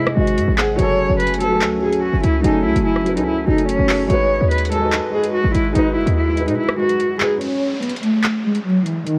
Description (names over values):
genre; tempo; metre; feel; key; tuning
hip hop, drill; 145 BPM; 4/4; half-time; unclear; A4 = 440 Hz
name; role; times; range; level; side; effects
dark cello; melody; 0.0-9.2 s; D#3 to C#5; -21 LUFS; equal; low-pass filter
dark baby grand piano; accompaniment; 0.0-7.4 s; F#3 to F#5; -24 LUFS; equal; low-pass filter
hollow soft pad; sustained chords; 0.0-7.4 s; B#2 to G#5; -28 LUFS; equal; chorus
drill drum kit; drums; 0.1-9.2 s; handclaps, hi-hat, rim click; -26 LUFS; equal; none
short 808-style bass; bass; 0.2-6.6 s; F#1 to B2; -23 LUFS; equal; none
downlifter; sound effects; 7.4-9.2 s; none; -35 LUFS; equal; none
room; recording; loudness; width
little or no reverb; worn, warbling old tape, cassette tape, vinyl crackle, warbly pitch drift; -18 LUFS; mono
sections
0.0-7.4 A section; 7.4-9.2 B section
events
kick muted 6.6-7.4; break 7.4-9.2; filter sweep 7.4-9.2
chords
0.0 G#; 0.8 F#madd9; 4.1 G#m7; 7.4 N.C.